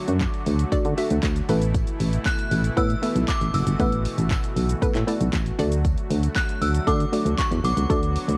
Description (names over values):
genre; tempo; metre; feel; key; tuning
dance-pop; 117 BPM; 4/4; straight; D major; A4 = 440 Hz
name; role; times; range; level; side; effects
synth chime; melody; 0.0-8.4 s; C#6 to F#6; -32 LUFS; equal; ensemble chorus, tremolo
hollow square pluck; accompaniment; 0.0-8.4 s; A3 to E5; -28 LUFS; equal; chorus, cassette tape
soft supersaw; sustained chords; 0.0-8.4 s; B2 to F#4; -35 LUFS; equal; sidechain pumping, cassette tape
solid FM bass; bass; 0.1-8.4 s; F#1 to D3; -25 LUFS; equal; sidechain pumping
house drum kit; drums; 0.1-8.4 s; handclaps, hi-hat, kick drum, shaker; -29 LUFS; equal; cassette tape
tambourine; percussion; 0.2-8.3 s; none; -52 LUFS; equal; none
room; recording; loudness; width
little or no reverb; home recording on cassette; -23 LUFS; mono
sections
0.0-8.4 A section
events
none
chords
0.0 D; 1.5 Asus2; 5.6 D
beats
0.21 0.72 1.23 | 1.75 2.26 2.77 3.29 | 3.80 4.31 4.82 5.34 | 5.85 6.36 6.88 7.39 | 7.90